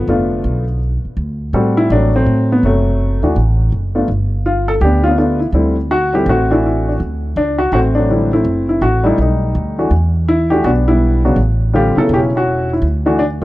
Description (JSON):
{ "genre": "jazz piano trio", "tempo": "165 BPM", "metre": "4/4", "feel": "swing 63% on 8ths", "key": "D mixolydian", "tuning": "A4 = 440 Hz", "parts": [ { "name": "warm baby grand piano", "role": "melody", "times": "0.0-13.4 s", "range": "C3 to A4", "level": "-14 LUFS", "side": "left 1 dB", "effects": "none" }, { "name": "upright bass", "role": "bass", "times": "0.0-13.4 s", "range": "E1 to A2", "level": "-16 LUFS", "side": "equal", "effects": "none" } ], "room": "small room ambience", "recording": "dry, close 1970s-style studio recording", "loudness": "-12 LUFS", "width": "side -17 dB against mid", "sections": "0.0-13.4 A section", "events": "none", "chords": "0.0 G7 (rootless); 1.2 D7 (rootless); 4.1 G7; 5.5 D7; 8.5 F#dim; 9.2 B7alt; 9.9 Em7; 11.4 A7; 12.8 N.C.", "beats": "0.08 0.44 0.81 | 1.17 1.53 1.90 2.26 | 2.63 2.99 3.35 3.72 | 4.08 4.45 4.81 5.17 | 5.54 5.90 6.27 6.63 | 7.00 7.36 7.72 8.09 | 8.45 8.82 9.18 9.55 | 9.91 10.27 10.64 11.00 | 11.37 11.73 12.10 12.46 | 12.82 13.19" }